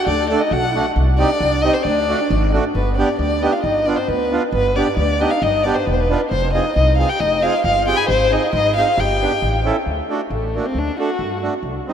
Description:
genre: klezmer.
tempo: 135 BPM.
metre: 2/4.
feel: straight.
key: G phrygian dominant.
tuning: A4 = 440 Hz.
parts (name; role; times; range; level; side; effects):
dark violin; melody; 0.0-11.4 s; A3 to B5; -19 LUFS; left 2 dB; none.
clear trombone; second line; 0.0-9.6 s; B3 to Ab4; -24 LUFS; right 2 dB; none.
upright bass; bass; 0.1-11.8 s; E1 to G2; -21 LUFS; equal; none.
accordion; accompaniment; 0.3-11.9 s; G3 to A4; -22 LUFS; right 4 dB; none.
room: wet cathedral reverb, RT60 5.7 s.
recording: in a vast, echoing space.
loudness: -15 LUFS.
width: side -8 dB against mid.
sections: 0.0-2.8 A section; 2.8-9.9 B section; 9.9-11.9 C section.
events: none.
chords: 0.0 D; 1.0 Cm; 1.9 D; 2.8 G; 6.3 Fm; 8.1 Ab; 9.0 G; 9.4 A7; 9.9 D.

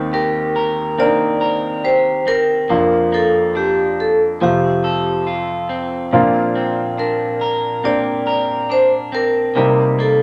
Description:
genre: pop.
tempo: 70 BPM.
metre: 4/4.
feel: straight.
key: Bb major.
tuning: A4 = 439 Hz.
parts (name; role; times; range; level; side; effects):
clear baby grand piano; accompaniment; 0.0-10.2 s; Eb2 to Bb4; -21 LUFS; equal; none.
electric guitar at the edge of break-up; arpeggios; 0.0-10.2 s; Bb2 to Bb4; -24 LUFS; equal; none.
vibraphone with medium hard mallets; melody; 0.1-10.2 s; G4 to D5; -19 LUFS; equal; none.
room: wet studio ambience, RT60 0.5 s.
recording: none.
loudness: -17 LUFS.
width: mono.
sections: 0.0-10.2 A section.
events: none.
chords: 0.0 Cm7/Eb; 2.7 Bb/F; 4.4 F; 6.1 Bbadd9; 9.6 Cm7.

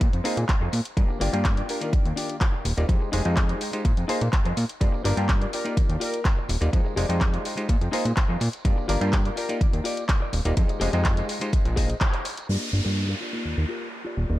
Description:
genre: filtered disco house.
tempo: 125 BPM.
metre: 4/4.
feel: straight.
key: unclear.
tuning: A4 = 440 Hz.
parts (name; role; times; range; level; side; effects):
fat analog bass; bass; 0.0-14.4 s; Eb1 to Bb2; -25 LUFS; equal; sidechain pumping, low-pass filter.
electronic kick drum; drums; 0.0-12.1 s; none; -22 LUFS; equal; studio reverb.
house drum kit; drums; 0.0-12.5 s; handclaps, hi-hat; -31 LUFS; left 1 dB; sidechain pumping on hats, studio reverb.
tambourine; percussion; 0.0-12.5 s; none; -49 LUFS; right 4 dB; none.
mellow clav; accompaniment; 0.2-14.4 s; Eb3 to G5; -31 LUFS; equal; phaser, sidechain pumping, low-pass filter, dub echo.
direct-recorded clean electric guitar; riff; 0.2-14.4 s; Bb3 to F5; -34 LUFS; left 3 dB; sidechain pumping, low-pass filter, dub echo.
analog synth brass; melody; 1.7-1.9, 5.5-6.4, 9.4-9.6 s; Bb4; -37 LUFS; equal; chorus, cassette tape, sidechain pumping, low-pass filter, dub echo.
downlifter; sound effects; 12.5-14.4 s; none; -32 LUFS; equal; none.
room: light reverb, digital ambience.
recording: echo-heavy mix.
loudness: -22 LUFS.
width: side -16 dB against mid.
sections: 0.0-12.5 A section; 12.5-14.4 B section.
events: band accent 12.0; filter sweep 12.5-14.4.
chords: 0.0 Bb9sus4; 1.0 Gm7; 1.7 Ebmaj9; 2.9 Fm9; 3.9 Bb9sus4; 4.8 Gm7; 5.5 Ebmaj9; 6.7 Fm9; 7.7 Bb9sus4; 8.7 Gm7; 9.4 Ebmaj9; 10.6 Fm9; 11.5 Bb9sus4; 12.5 Gm7; 13.2 Ebmaj9.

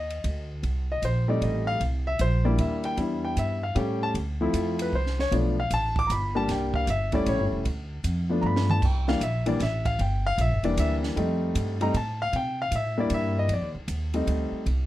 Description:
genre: jazz piano trio.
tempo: 154 BPM.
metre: 3/4.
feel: swing 65% on 8ths.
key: C mixolydian.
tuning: A4 = 438 Hz.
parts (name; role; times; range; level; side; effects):
warm grand piano; melody; 0.0-14.6 s; E3 to D6; -26 LUFS; left 2 dB; none.
upright bass; bass; 0.0-14.9 s; E1 to C3; -27 LUFS; equal; none.
compact cocktail drum kit; drums; 0.1-14.8 s; crash cymbal, hi-hat, kick drum, ride cymbal, snare drum, toms; -35 LUFS; right 2 dB; none.
room: little or no reverb.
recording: close, detailed microphones.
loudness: -24 LUFS.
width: side -14 dB against mid.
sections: 0.0-8.8 A section; 8.8-14.9 A section.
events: grand piano solo 0.0-14.9; drum fill 8.4-8.8.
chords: 0.0 F9 (rootless); 1.8 C9; 3.0 Em7; 3.8 A7; 4.1 Dm7; 5.3 G9; 6.5 C9; 7.3 A7; 7.7 Dm; 8.4 G9; 8.8 C9; 11.2 F9; 12.3 C9; 13.5 F9 (rootless).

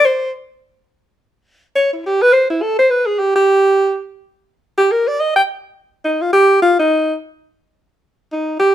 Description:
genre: jazz.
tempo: 210 BPM.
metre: 4/4.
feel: swing 59% on 8ths.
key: unclear.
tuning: A4 = 440 Hz.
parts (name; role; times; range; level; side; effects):
breathy alto saxophone; solo; 0.0-8.7 s; Eb4 to G5; -12 LUFS; equal; none.
room: moderate studio reverb, RT60 0.8 s.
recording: minimal, uncompressed stereo recording.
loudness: -13 LUFS.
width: side -11 dB against mid.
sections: 0.0-5.7 A section; 5.7-8.7 B section.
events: alto saxophone solo 0.0-5.7.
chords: none.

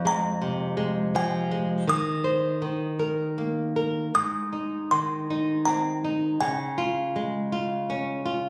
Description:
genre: children's music, lullaby.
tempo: 81 BPM.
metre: 3/4.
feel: rubato.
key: Ab major.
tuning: A4 = 438 Hz.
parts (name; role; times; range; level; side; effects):
flamenco guitar; accompaniment; 0.0-8.5 s; F2 to C5; -28 LUFS; equal; none.
music box; melody; 0.1-7.5 s; Ab5 to Eb6; -30 LUFS; equal; none.
room: moderate recital hall reverb, RT60 1.7 s.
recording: recorded on a phone in the room, studio reverb, compression.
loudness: -27 LUFS.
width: mono.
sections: 0.0-8.5 A section.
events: none.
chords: 0.0 Fm; 1.9 Cm/Eb; 2.6 Eb5; 4.2 Ab; 6.4 Db.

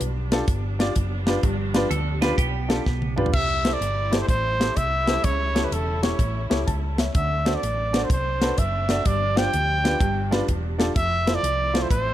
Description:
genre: uptempo gospel.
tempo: 126 BPM.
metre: 4/4.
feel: swing 66% on 8ths.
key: C major.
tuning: A4 = 440 Hz.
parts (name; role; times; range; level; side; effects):
clear upright piano; accompaniment; 0.0-11.9 s; G2 to A5; -27 LUFS; equal; none.
rich studio string section; sustained chords; 0.0-12.1 s; F3 to E4; -36 LUFS; right 3 dB; none.
hollow-body short-scale fingered electric bass; bass; 0.0-12.1 s; E1 to D2; -27 LUFS; equal; none.
tight funk drum kit; drums; 0.0-12.1 s; crash cymbal, hi-hat, kick drum, snare drum, toms; -24 LUFS; equal; none.
clean electric guitar; second line; 1.9-3.1 s; B3 to B4; -30 LUFS; right 6 dB; phaser.
breathy trumpet; melody; 3.3-12.1 s; A4 to G5; -25 LUFS; equal; none.
room: light reverb.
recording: none.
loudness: -20 LUFS.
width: side -12 dB against mid.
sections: 0.0-3.3 A section; 3.3-12.1 B section.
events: drum fill 2.9-3.3.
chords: 0.0 G7; 3.3 C6; 5.2 A7; 7.2 D7; 9.1 G7sus4; 10.0 G7; 11.0 Fmaj7.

